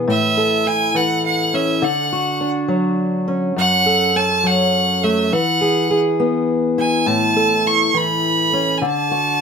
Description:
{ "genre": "acoustic folk duo or small band", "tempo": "69 BPM (dotted quarters)", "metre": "6/8", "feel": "straight", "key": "A major", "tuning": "A4 = 436 Hz", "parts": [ { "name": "fingerpicked steel-string acoustic guitar", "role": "accompaniment", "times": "0.0-9.4 s", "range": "F#2 to A4", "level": "-18 LUFS", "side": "left 1 dB", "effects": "none" }, { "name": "bright fiddle", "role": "melody", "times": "0.1-9.4 s", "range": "E5 to C#6", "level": "-17 LUFS", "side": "right 2 dB", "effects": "none" } ], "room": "moderate studio reverb, RT60 0.6 s", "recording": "none", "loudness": "-15 LUFS", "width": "side -6 dB against mid", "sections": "0.1-9.4 A section", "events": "none", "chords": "0.1 A; 1.8 Dmaj7; 3.6 F#m; 5.3 E; 7.1 Aadd9; 8.8 D", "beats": "| 0.08 0.95 | 1.83 2.70 | 3.57 4.45 | 5.32 6.20 | 7.07 7.95 | 8.82" }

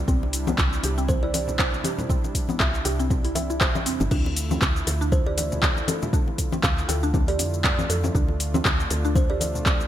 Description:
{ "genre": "afro house", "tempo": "119 BPM", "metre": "4/4", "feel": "swing 56% on 16ths", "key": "D minor", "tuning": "A4 = 440 Hz", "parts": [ { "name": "warm analog pad", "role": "sustained chords", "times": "0.0-9.9 s", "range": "C3 to F4", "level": "-34 LUFS", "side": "right 1 dB", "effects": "chorus, sidechain pumping" }, { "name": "woody FM bass", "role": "bass", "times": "0.0-9.9 s", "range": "G1 to F2", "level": "-27 LUFS", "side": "equal", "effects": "sidechain pumping" }, { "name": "mallet-like synth pluck", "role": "arpeggios", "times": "0.1-9.8 s", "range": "B3 to D5", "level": "-31 LUFS", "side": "right 1 dB", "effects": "analog chorus, sidechain pumping, digital delay" }, { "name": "afro-pop drum kit", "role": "drums", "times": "0.1-9.9 s", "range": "crash cymbal, handclaps, hi-hat, shaker", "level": "-27 LUFS", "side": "equal", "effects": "gated reverb" }, { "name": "electronic kick drum", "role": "drums", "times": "0.1-9.8 s", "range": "none", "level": "-24 LUFS", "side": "equal", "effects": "none" }, { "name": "congas", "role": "percussion", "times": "0.1-9.9 s", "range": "none", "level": "-30 LUFS", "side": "left 4 dB", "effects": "none" }, { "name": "kalimba", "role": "melody", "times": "1.1-9.5 s", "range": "C5 to G5", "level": "-33 LUFS", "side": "right 3 dB", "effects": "digital delay" } ], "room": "light reverb, digital ambience", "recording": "bright 1980s-style digital production", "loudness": "-21 LUFS", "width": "side -11 dB against mid", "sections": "0.0-9.9 A section", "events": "none", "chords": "0.1 C; 4.1 Dm", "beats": "| 0.08 0.58 1.09 1.59 | 2.10 2.60 3.10 3.61 | 4.11 4.62 5.12 5.63 | 6.13 6.63 7.14 7.64 | 8.15 8.65 9.15 9.66" }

